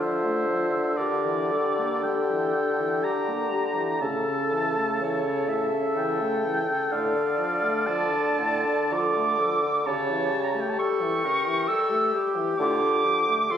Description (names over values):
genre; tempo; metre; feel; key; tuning
classical, slow romantic movement for wind quintet; 53-67 BPM; 3/4; rubato; D minor; A4 = 440 Hz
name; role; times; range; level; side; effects
concert flute; melody; 0.0-13.6 s; F4 to A4; -29 LUFS; left 6 dB; none
warm oboe; second line; 0.0-13.6 s; D5 to E6; -27 LUFS; right 1 dB; none
clear French horn; accompaniment; 0.0-13.6 s; A2 to Bb3; -34 LUFS; left 1 dB; none
clear clarinet; accompaniment; 0.0-13.6 s; F4 to E5; -31 LUFS; right 4 dB; none
warm bassoon; bass; 0.0-13.3 s; C#3 to D3; -28 LUFS; right 1 dB; none
room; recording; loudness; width
moderate scoring stage reverb, RT60 1.9 s; recorded on a phone in the room, club reverb; -22 LUFS; side -9 dB against mid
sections
0.0-13.6 A section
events
none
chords
0.0 Dm; 1.0 Em7b5/D; 4.0 A; 6.9 Dm/A; 9.9 A7/C#; 12.6 Dm/A